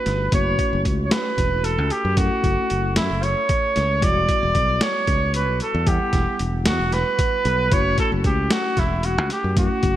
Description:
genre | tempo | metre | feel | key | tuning
progressive instrumental, band music in an uneven meter | 227 BPM (eighths) | 7/8 | straight | F# phrygian | A4 = 444 Hz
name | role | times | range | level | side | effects
warm trumpet | melody | 0.0-10.0 s | E4 to D5 | -22 LUFS | right 1 dB | none
tine electric piano | accompaniment | 0.0-10.0 s | G3 to F#5 | -29 LUFS | left 2 dB | fast stereo tremolo
modern bright fingered electric bass | bass | 0.1-9.9 s | E1 to F#2 | -23 LUFS | equal | none
boom bap sampler-style drum kit | drums | 0.1-10.0 s | hi-hat, kick drum, snare drum | -23 LUFS | equal | none
room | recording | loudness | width
light reverb, digital ambience | bright 1980s-style digital production | -18 LUFS | side -12 dB against mid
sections
0.0-10.0 A section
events
none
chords
0.3 F#m7; 4.0 Emadd9; 7.7 F#m7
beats
0.07 | 0.33 0.59 0.86 1.12 1.39 1.65 1.92 | 2.18 2.44 2.71 2.97 3.24 3.50 3.76 | 4.03 4.29 4.56 4.82 5.08 5.35 5.61 | 5.88 6.14 6.40 6.67 6.93 7.19 7.46 | 7.72 7.99 8.25 8.51 8.78 9.04 9.30 | 9.57 9.83

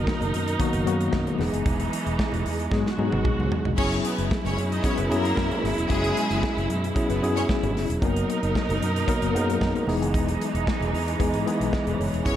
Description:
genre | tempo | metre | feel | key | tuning
disco | 113 BPM | 4/4 | straight | unclear | A4 = 440 Hz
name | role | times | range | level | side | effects
mellow tine electric piano | accompaniment | 0.0-12.4 s | D#3 to D#5 | -26 LUFS | left 3 dB | medium stereo tremolo
warm studio string section | sustained chords | 0.0-12.4 s | B2 to A#4 | -29 LUFS | right 4 dB | none
fingered electric bass with an envelope filter | bass | 0.0-12.4 s | E1 to G#2 | -28 LUFS | equal | none
modern studio drum kit | drums | 0.1-12.4 s | crash cymbal, hi-hat, kick drum, snare drum, toms | -28 LUFS | equal | gated reverb
congas | percussion | 0.1-12.4 s | none | -37 LUFS | left 2 dB | none
clear studio string section | second line | 3.8-7.5, 12.3-12.4 s | G#3 to D#5 | -30 LUFS | equal | none
room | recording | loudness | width
studio reverb | none | -22 LUFS | side -11 dB against mid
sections
0.0-3.8 A section; 3.8-12.4 A section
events
drum fill 2.7-3.8; tine electric piano fill 11.5-12.3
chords
0.0 Bmaj7/F#; 1.4 Emaj7; 2.7 G#m7; 3.8 F#9sus4; 8.0 Bmaj7/F#; 9.9 Emaj7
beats
0.07 0.60 1.13 | 1.66 2.19 2.72 3.25 | 3.78 4.31 4.84 5.37 | 5.90 6.43 6.96 7.49 | 8.02 8.55 9.08 9.61 | 10.14 10.67 11.20 11.73 | 12.26

